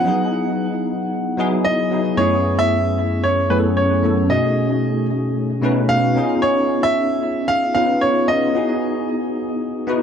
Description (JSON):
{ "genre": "amapiano", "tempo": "113 BPM", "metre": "4/4", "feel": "swing 55% on 16ths", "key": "unclear", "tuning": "A4 = 440 Hz", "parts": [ { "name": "clear baby grand piano", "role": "melody", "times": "0.0-10.0 s", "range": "B4 to F#5", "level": "-20 LUFS", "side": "equal", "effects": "tape echo" }, { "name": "barky tine electric piano", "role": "accompaniment", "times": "0.0-10.0 s", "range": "F#2 to B4", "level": "-18 LUFS", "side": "equal", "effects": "ensemble chorus" } ], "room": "light reverb, small room ambience", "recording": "dark, warm production", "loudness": "-16 LUFS", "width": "side -7 dB against mid", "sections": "0.0-10.0 A section", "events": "none", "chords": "0.1 Emaj9; 2.2 F#m11; 4.3 B13; 6.2 C#7; 8.6 Emaj9", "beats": "| 0.06 0.59 1.12 1.65 | 2.18 2.71 3.24 3.77 | 4.30 4.83 5.37 5.90 | 6.43 6.96 7.49 8.02 | 8.55 9.08 9.61" }